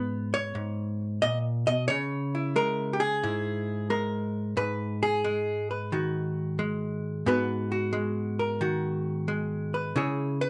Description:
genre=solo jazz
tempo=89 BPM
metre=4/4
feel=swing 67% on 8ths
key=G# minor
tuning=A4 = 444 Hz
part: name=hollow-body jazz guitar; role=solo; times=0.0-10.5 s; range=G#2 to D#5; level=-29 LUFS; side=equal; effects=none
room=moderate club reverb, RT60 0.6 s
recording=nothing above 10.3 kHz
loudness=-29 LUFS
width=mono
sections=0.0-10.5 A section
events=none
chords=0.0 G#m; 1.9 C#m; 4.6 G#m7; 9.9 C#m7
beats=0.54 1.21 | 1.88 2.55 3.23 3.90 | 4.57 5.24 5.91 6.58 | 7.25 7.92 8.60 9.27 | 9.94

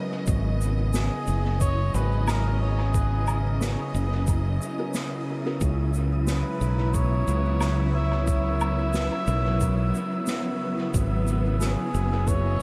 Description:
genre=ambient dub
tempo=90 BPM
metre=4/4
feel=swing 54% on 16ths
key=C# dorian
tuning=A4 = 442 Hz
part: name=dark studio string section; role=sustained chords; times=0.0-12.6 s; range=C#3 to D#5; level=-33 LUFS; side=equal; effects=none
part: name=vibraphone with soft mallets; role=arpeggios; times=0.0-0.6, 6.3-11.0 s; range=F#3 to A#5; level=-40 LUFS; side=equal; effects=diffuse ambient delay
part: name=wind-like tuned noise texture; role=texture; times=0.0-12.6 s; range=E4 to D#6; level=-39 LUFS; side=equal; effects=built-in reverb, ensemble chorus
part: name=fingered electric bass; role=bass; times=0.3-12.6 s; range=F#1 to C#2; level=-27 LUFS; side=equal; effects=none
part: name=electronic kick drum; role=drums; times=0.3-12.4 s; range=none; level=-28 LUFS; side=equal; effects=none
part: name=shaker, snare drum and woodblock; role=drums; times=0.3-12.4 s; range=none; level=-38 LUFS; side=equal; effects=dub echo
part: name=trumpet with cup mute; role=melody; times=0.9-12.6 s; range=G#4 to E5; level=-35 LUFS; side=equal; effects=diffuse ambient delay
part: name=dark upright piano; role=stabs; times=0.9-11.8 s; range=B3 to B4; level=-40 LUFS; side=equal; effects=none
room=moderate huge ambient reverb, RT60 5.7 s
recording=dreamy mix soaked in reverb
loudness=-25 LUFS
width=mono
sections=0.0-12.6 A section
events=none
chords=0.3 G#m11; 5.6 C#m7; 10.9 G#m11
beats=| 0.28 0.94 1.61 2.28 | 2.94 3.61 4.28 4.94 | 5.61 6.28 6.94 7.61 | 8.28 8.94 9.61 10.28 | 10.94 11.61 12.28

